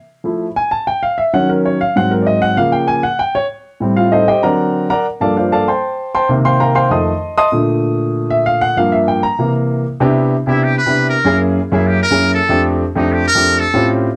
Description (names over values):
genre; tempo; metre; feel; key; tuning
jazz; 194 BPM; 4/4; straight; F major; A4 = 440 Hz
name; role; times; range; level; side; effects
warm concert grand piano; accompaniment; 0.2-14.1 s; F2 to Eb6; -15 LUFS; equal; none
trumpet with metal mute; melody; 10.5-13.9 s; Eb4 to B4; -17 LUFS; equal; none
room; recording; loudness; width
moderate club reverb, RT60 0.7 s; dark, warm production; -15 LUFS; mono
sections
0.1-10.0 A section; 10.0-14.2 A section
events
grand piano solo 0.0-10.0; muted trumpet solo 10.0-14.2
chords
0.1 Fmaj7; 1.3 Ebm7; 2.0 Ab7; 2.6 Db6; 3.8 Am7b5; 4.4 D7b13; 5.1 Gm11; 6.3 Cm7; 6.9 F7; 7.5 Bbmaj7; 8.8 Gm7; 9.4 C7; 10.0 Cmaj9; 11.2 F#9; 12.5 F69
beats
| 0.10 0.41 0.72 1.03 | 1.34 1.65 1.96 2.27 | 2.58 2.89 3.20 3.50 | 3.81 4.12 4.43 4.74 | 5.05 5.36 5.67 5.98 | 6.29 6.60 6.91 7.22 | 7.53 7.84 8.15 8.46 | 8.77 9.08 9.39 9.70 | 10.01 10.32 10.63 10.94 | 11.25 11.56 11.87 12.18 | 12.49 12.80 13.11 13.43 | 13.74 14.05